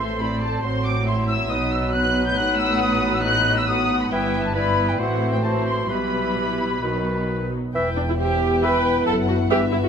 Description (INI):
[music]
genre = quick classical-period movement for symphony orchestra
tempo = 137 BPM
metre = 4/4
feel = straight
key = E minor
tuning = A4 = 442 Hz
[part]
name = muted studio violin section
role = melody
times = 0.0-9.9 s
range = E5 to G6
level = -28 LUFS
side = left 1 dB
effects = none
[part]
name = clear oboe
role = second line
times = 0.0-9.7 s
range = B4 to E5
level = -31 LUFS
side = right 2 dB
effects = none
[part]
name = concert flute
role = second line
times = 0.0-9.9 s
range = D5 to G6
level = -27 LUFS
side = left 2 dB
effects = none
[part]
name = muted studio violin section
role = second line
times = 0.0-9.9 s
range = B4 to G5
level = -30 LUFS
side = left 6 dB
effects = none
[part]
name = warm clarinet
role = second line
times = 0.0-9.7 s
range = C4 to B4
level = -32 LUFS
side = left 1 dB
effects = none
[part]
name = muted symphonic viola section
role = accompaniment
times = 0.0-9.9 s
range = F#3 to B4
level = -26 LUFS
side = right 2 dB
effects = none
[part]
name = warm bassoon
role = accompaniment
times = 0.0-9.7 s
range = D#3 to F#3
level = -29 LUFS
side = right 1 dB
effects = none
[part]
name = muted studio cello section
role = bass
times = 0.0-9.9 s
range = E2 to B2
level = -28 LUFS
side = right 1 dB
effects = none
[part]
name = muted studio double bass section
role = bass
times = 0.0-9.9 s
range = E1 to B1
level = -28 LUFS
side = right 1 dB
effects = none
[part]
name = mellow French horn section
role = sustained chords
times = 7.8-9.9 s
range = B3 to E4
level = -25 LUFS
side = left 5 dB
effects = none
[sound]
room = moderate scoring stage reverb, RT60 1.9 s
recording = none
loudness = -19 LUFS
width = side -7 dB against mid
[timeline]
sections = 0.0-7.7 A section; 7.7-9.9 B section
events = none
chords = 0.0 Am; 0.6 F#dim/A; 1.5 B; 2.4 B7/A; 4.1 Em/G; 5.0 F#m7b5/A; 5.9 Em/B; 6.8 B; 7.7 Em